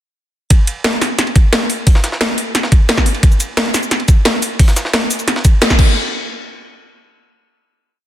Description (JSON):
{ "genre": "drum and bass", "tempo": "176 BPM", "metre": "4/4", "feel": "straight", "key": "none", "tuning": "none", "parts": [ { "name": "drum and bass drum kit", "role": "drums", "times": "0.5-5.9 s", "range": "cabasa, crash cymbal, hi-hat, snare drum", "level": "-16 LUFS", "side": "equal", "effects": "soft clipping on snare" }, { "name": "electronic kick drum", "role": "drums", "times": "0.5-5.9 s", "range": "none", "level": "-10 LUFS", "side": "equal", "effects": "overdrive" }, { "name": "jungle sampler-style drum kit", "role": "drums", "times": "0.5-5.8 s", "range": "hi-hat, ride cymbal, snare drum", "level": "-24 LUFS", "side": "right 1 dB", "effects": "high-pass filter on cymbals, high-pass filter on snare, high-pass filter on hats" } ], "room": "light reverb, digital ambience", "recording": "dense, heavily limited modern master", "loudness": "-11 LUFS", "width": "side -12 dB against mid", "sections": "0.5-6.0 drop; 6.0-7.3 final hit", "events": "drop 0.5-6.0; band accent 5.6", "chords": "none" }